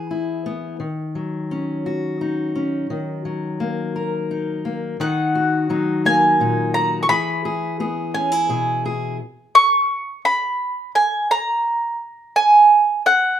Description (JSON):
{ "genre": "folk", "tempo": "57 BPM (dotted quarters)", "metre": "6/8", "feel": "straight", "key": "unclear", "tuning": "A4 = 441 Hz", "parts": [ { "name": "mandolin", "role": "melody", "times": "0.0-0.1, 5.0-13.4 s", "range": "F#5 to C#6", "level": "-15 LUFS", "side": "right 1 dB", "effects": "plate reverb" }, { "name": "fingerpicked steel-string acoustic guitar", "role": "accompaniment", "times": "0.0-9.2 s", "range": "A#2 to A#4", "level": "-22 LUFS", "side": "left 3 dB", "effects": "plate reverb" } ], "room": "wet studio reverb, RT60 0.7 s", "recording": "rough home demo mix", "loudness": "-17 LUFS", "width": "side -10 dB against mid", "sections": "0.0-5.0 A section; 5.0-13.4 B section", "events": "none", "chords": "0.0 C#m7 (rootless); 0.8 D#m7; 2.9 D#m; 7.1 E; 9.2 N.C." }